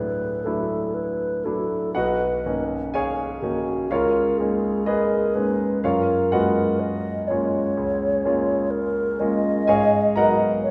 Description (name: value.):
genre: classical, impressionist duo for alto flute and grand piano.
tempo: 62 BPM.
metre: 4/4.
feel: rubato.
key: F# major.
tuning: A4 = 440 Hz.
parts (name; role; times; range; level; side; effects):
wooden-headed alto flute; melody; 0.0-10.7 s; F#4 to D#5; -26 LUFS; equal; none.
clear concert grand piano; accompaniment; 0.0-10.7 s; B1 to A#5; -25 LUFS; equal; none.
room: wet scoring stage reverb, RT60 1.6 s.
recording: recorded in a church or concert hall.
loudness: -22 LUFS.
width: mono.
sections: 0.0-10.7 A section.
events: none.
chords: 0.0 Dadd9; 1.9 Bmaj9; 3.9 C#13; 5.8 F#maj9; 9.7 G#m7.